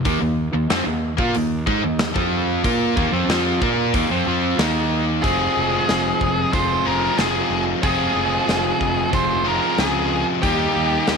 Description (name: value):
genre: classic rock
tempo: 92 BPM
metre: 4/4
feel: straight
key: F minor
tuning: A4 = 445 Hz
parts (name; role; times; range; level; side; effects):
- cranked stack guitar; riff; 0.0-11.2 s; F2 to Bb4; -23 LUFS; left 13 dB; overdrive
- overdriven electric guitar; riff; 0.0-11.2 s; Eb3 to Bb4; -23 LUFS; right 12 dB; none
- fuzz fingered electric bass; bass; 0.0-11.2 s; F1 to Bb2; -26 LUFS; equal; overdrive
- big rock drum kit; drums; 0.1-11.2 s; hi-hat, kick drum, snare drum; -25 LUFS; equal; none
- octave-fuzz lead guitar; melody; 5.2-11.2 s; G4 to C5; -22 LUFS; left 1 dB; distortion
- picked plugged-in steel-string acoustic guitar; accompaniment; 5.2-11.2 s; F2 to Ab4; -34 LUFS; left 11 dB; none
room: light reverb, studio reverb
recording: 1960s-style stereo with parts hard left and right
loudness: -17 LUFS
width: side -5 dB against mid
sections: 0.0-5.2 A section; 5.2-11.2 B section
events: none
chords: 0.0 Eb5; 5.2 Fm; 10.4 Eb